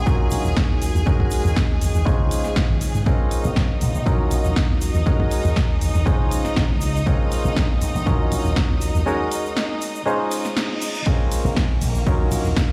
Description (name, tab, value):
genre	filtered disco house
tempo	120 BPM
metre	4/4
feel	straight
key	unclear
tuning	A4 = 439 Hz
part	mellow clav	accompaniment	0.0-12.7 s	Gb3 to C5	-28 LUFS	equal	phaser, vintage 12-bit sampler grit, sidechain pumping
part	bright studio string section	sustained chords	0.0-12.7 s	Bb3 to Ab5	-33 LUFS	equal	sidechain pumping
part	slap bass with an envelope filter	bass	0.0-12.7 s	Ab1 to Db3	-24 LUFS	equal	sidechain pumping
part	electronic kick drum	drums	0.1-12.7 s	none	-23 LUFS	equal	studio reverb
part	egg shaker	percussion	0.1-12.7 s	none	-41 LUFS	equal	sidechain pumping on perc
part	house drum kit	drums	0.3-12.7 s	hi-hat, ride cymbal, snare drum	-31 LUFS	equal	sidechain pumping on cymbals, studio reverb, sidechain pumping on hats
part	reverse cymbal	sound effects	10.4-11.1 s	none	-35 LUFS	equal	none
room	digital ambience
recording	played on a big sound system in a bare room, stone room reverb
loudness	-21 LUFS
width	mono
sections	0.0-12.7 A section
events	break 9.1-11.1; reverse cymbal 10.4-11.1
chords	0.1 Ebm9; 1.1 Ab9sus4; 2.1 Dbmaj9; 3.1 Bbm9; 4.1 Ebm9; 5.1 Ab9sus4; 6.1 Dbmaj9; 7.1 Bbm9; 8.1 Ebm9; 9.1 Ab9sus4; 10.1 Dbmaj9; 11.1 Bbm9; 12.1 Ebm9